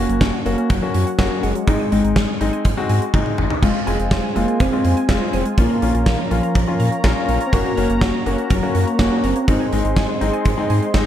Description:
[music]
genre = synth-pop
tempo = 123 BPM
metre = 4/4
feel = straight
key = unclear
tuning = A4 = 440 Hz
[part]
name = warm velvety synth lead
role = melody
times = 0.0-10.2 s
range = Eb3 to C4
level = -22 LUFS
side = equal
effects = chorus
[part]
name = clear concert grand piano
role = accompaniment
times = 0.0-11.1 s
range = Ab3 to Gb4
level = -23 LUFS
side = left 4 dB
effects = none
[part]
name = analog pluck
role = arpeggios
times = 0.0-11.0 s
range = Gb3 to Bb5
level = -29 LUFS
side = right 1 dB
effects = chorus, tape echo
[part]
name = round analog bass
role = bass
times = 0.0-11.0 s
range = F1 to Bb2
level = -22 LUFS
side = equal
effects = none
[part]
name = gated 80s drum kit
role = drums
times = 0.1-11.1 s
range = crash cymbal, hi-hat, kick drum, snare drum, toms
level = -20 LUFS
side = equal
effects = none
[part]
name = sweeping resonant pad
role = sustained chords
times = 3.6-11.1 s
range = F4 to C6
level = -26 LUFS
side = right 1 dB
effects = chorus
[sound]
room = moderate lush hall reverb, RT60 1.9 s, studio reverb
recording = dark, warm production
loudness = -16 LUFS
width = side -10 dB against mid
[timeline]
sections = 0.0-11.1 A section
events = drum fill 3.1-3.6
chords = 0.0 Gb; 1.7 Ab; 3.6 Fm; 5.6 Bbm; 7.5 Gb; 9.5 Ab

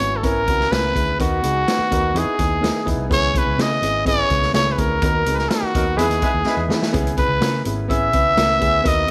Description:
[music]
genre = uptempo 1960s-style soul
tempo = 125 BPM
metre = 4/4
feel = straight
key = unclear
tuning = A4 = 440 Hz
[part]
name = growling trumpet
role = melody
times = 0.0-9.1 s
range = F#4 to E5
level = -22 LUFS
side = equal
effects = none
[part]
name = warm grand piano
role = accompaniment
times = 0.0-9.1 s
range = B3 to B4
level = -27 LUFS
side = equal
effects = none
[part]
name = vintage muted picked electric bass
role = bass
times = 0.0-9.1 s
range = G#1 to E3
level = -27 LUFS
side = equal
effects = none
[part]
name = swinging big-band drum kit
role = drums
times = 0.0-9.1 s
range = hi-hat, kick drum, snare drum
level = -26 LUFS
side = equal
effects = none
[part]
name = warm horn section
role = second line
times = 5.7-6.9 s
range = F#3 to B4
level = -28 LUFS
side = equal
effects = none
[sound]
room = light reverb, small room reverb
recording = none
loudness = -19 LUFS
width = mono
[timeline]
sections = 0.0-9.1 A section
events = band accent 5.0-6.9; drum fill 6.5-6.9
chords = 0.0 C#m7; 1.2 Bmaj7; 2.2 Emaj7; 3.1 C#m7; 5.0 Bmaj7; 6.0 Emaj7; 6.9 C#m7

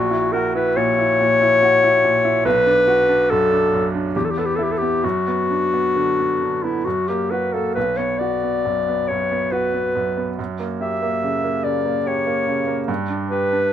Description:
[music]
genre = classical, romantic duo for clarinet and grand piano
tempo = 65-72 BPM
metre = 3/4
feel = rubato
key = B minor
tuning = A4 = 440 Hz
[part]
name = clear clarinet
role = melody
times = 0.0-13.7 s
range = E4 to E5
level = -18 LUFS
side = left 2 dB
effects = none
[part]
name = clear baby grand piano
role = accompaniment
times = 0.0-13.7 s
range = A#1 to G4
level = -22 LUFS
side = right 3 dB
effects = none
[sound]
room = light reverb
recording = minimal, uncompressed stereo recording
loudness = -17 LUFS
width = side -10 dB against mid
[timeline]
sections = 0.0-13.7 A section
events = none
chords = 0.0 F#7/A#; 2.5 Bm; 4.1 E5; 5.0 Bm/F#; 6.8 F#; 7.8 Bm; 10.4 F#7b9; 12.9 G

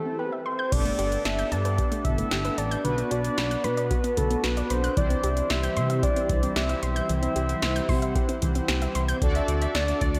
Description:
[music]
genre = synth-pop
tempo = 113 BPM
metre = 4/4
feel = straight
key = unclear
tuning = A4 = 435 Hz
[part]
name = soft octave-layered synth lead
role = melody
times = 0.0-10.2 s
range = A4 to E5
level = -31 LUFS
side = equal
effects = chorus, delay, slapback echo
[part]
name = phased analog pad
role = sustained chords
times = 0.0-0.7, 5.4-9.2 s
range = E3 to G5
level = -38 LUFS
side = equal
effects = phaser, chorus, tremolo
[part]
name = soft round pluck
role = arpeggios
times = 0.0-9.2 s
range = B2 to G6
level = -36 LUFS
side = equal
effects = chorus, delay
[part]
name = analog synth brass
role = accompaniment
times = 0.7-10.2 s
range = B3 to D5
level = -34 LUFS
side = equal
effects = chorus, slapback echo
[part]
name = smooth gliding synth bass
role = bass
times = 0.7-10.2 s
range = G1 to C3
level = -30 LUFS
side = equal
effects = none
[part]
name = electro analog drum machine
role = drums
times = 0.7-10.2 s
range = crash cymbal, hi-hat, kick drum, snare drum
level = -31 LUFS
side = equal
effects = none
[part]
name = clear concert grand piano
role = second line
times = 9.4-10.1 s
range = D5 to E5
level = -35 LUFS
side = equal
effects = delay, slapback echo
[sound]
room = moderate lush hall reverb, RT60 2.3 s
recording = big arena sound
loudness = -25 LUFS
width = mono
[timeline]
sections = 0.7-9.2 A section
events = break 0.0-0.7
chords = 0.0 C; 0.7 Gadd9; 2.8 Bm; 5.0 C; 9.2 D

